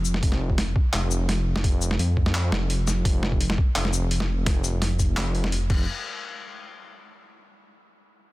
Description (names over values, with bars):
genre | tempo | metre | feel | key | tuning
half-time drum and bass | 170 BPM | 4/4 | half-time | unclear | A4 = 440 Hz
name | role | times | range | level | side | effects
dark detuned saw bass | bass | 0.0-5.9 s | F1 to F2 | -24 LUFS | equal | none
boom bap sampler-style drum kit | drums | 0.1-5.8 s | crash cymbal, handclaps, hi-hat, shaker, snare drum | -28 LUFS | equal | overdrive
electronic kick drum | drums | 0.2-5.8 s | none | -22 LUFS | equal | overdrive
room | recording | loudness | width
digital ambience | dense, heavily limited modern master | -21 LUFS | side -19 dB against mid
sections
0.0-5.9 A section; 5.9-7.3 B section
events
drop 0.0-5.9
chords
none